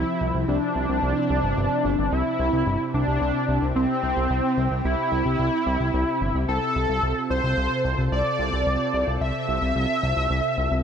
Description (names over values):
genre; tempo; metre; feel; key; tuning
synthwave; 110 BPM; 4/4; straight; unclear; A4 = 437 Hz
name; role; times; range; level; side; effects
wide unison lead; melody; 0.0-10.7 s; C4 to E5; -24 LUFS; equal; analog chorus, shimmer reverb, tape echo
lush unison pad; sustained chords; 0.0-10.8 s; C3 to A4; -28 LUFS; equal; chorus, shimmer reverb
fat analog bass; bass; 0.0-10.8 s; G1 to C2; -25 LUFS; equal; none
room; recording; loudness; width
moderate lush hall reverb, RT60 2.2 s; none; -21 LUFS; side -7 dB against mid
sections
0.0-10.8 A section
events
none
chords
0.0 Dm7/C; 2.1 C; 6.5 F/C